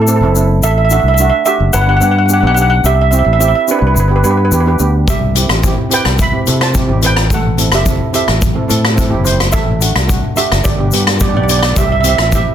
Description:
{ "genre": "calypso", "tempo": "108 BPM", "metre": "4/4", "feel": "straight", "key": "G major", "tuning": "A4 = 439 Hz", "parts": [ { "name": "steel pan", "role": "melody", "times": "0.0-12.5 s", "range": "D4 to B5", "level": "-15 LUFS", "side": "right 3 dB", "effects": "none" }, { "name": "fingered electric bass", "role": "bass", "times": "0.0-12.4 s", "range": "F#1 to C3", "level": "-13 LUFS", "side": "left 1 dB", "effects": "none" }, { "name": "steel pan", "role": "accompaniment", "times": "0.1-12.5 s", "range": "A3 to C5", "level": "-19 LUFS", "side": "right 3 dB", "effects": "none" }, { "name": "egg shaker", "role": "percussion", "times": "0.1-12.5 s", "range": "none", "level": "-22 LUFS", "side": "left 8 dB", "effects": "none" }, { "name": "street-band drum kit", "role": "drums", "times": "5.1-12.5 s", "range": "hi-hat, kick drum, rim click", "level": "-14 LUFS", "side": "left 1 dB", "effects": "soft clipping on snare" } ], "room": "moderate studio reverb, RT60 0.5 s", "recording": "dense, heavily limited modern master", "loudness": "-10 LUFS", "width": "side -10 dB against mid", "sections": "0.0-12.5 A section", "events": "none", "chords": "0.0 Am; 0.6 D/A; 1.7 G; 2.9 C; 4.0 G; 5.1 C; 7.3 Am; 9.5 Dadd9/A; 10.7 G; 11.8 C", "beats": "0.07 | 0.63 1.19 1.74 2.30 | 2.85 3.41 3.97 4.52 | 5.08 5.64 6.19 6.75 | 7.31 7.87 8.42 8.98 | 9.54 10.09 10.65 11.21 | 11.77 12.32" }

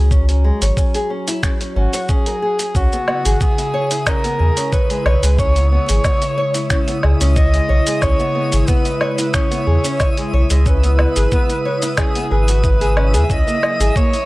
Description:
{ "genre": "organic downtempo", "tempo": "91 BPM", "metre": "4/4", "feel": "straight", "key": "C# dorian", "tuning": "A4 = 440 Hz", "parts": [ { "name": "warbly tape-like pad", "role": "sustained chords", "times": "0.0-14.3 s", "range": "C#3 to A#5", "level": "-26 LUFS", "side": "left 1 dB", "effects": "chorus, built-in reverb, sidechain pumping" }, { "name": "nylon-string guitar", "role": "arpeggios", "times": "0.0-14.2 s", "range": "G#3 to C#5", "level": "-23 LUFS", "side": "left 1 dB", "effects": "analog delay" }, { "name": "warm sub bass", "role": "bass", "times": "0.0-13.9 s", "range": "G#1 to E2", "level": "-14 LUFS", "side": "equal", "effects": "sidechain pumping" }, { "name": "dusty soul sampler-style drum kit", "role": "drums", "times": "0.1-14.3 s", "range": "finger snaps, hi-hat, shaker, woodblock", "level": "-23 LUFS", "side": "equal", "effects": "small room ambience" }, { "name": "electronic kick drum", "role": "drums", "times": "0.1-14.1 s", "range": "none", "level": "-17 LUFS", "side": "equal", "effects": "small room ambience" }, { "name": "dark kamancheh", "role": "melody", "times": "1.8-14.3 s", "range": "F#4 to E5", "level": "-21 LUFS", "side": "equal", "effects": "analog delay" }, { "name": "twinkling granular texture", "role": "texture", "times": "3.2-14.3 s", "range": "E4 to D#6", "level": "-29 LUFS", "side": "right 1 dB", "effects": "built-in reverb" } ], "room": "little or no reverb", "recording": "dry, gritty hardware recording", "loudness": "-14 LUFS", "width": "side -20 dB against mid", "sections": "0.0-2.8 A section; 2.8-14.3 B section", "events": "none", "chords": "0.0 F#; 2.8 C#m7; 13.3 F#", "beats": "| 0.11 0.77 1.43 2.09 | 2.75 3.41 4.07 4.73 | 5.39 6.05 6.71 7.37 | 8.03 8.69 9.34 10.00 | 10.66 11.32 11.98 12.64 | 13.30 13.96" }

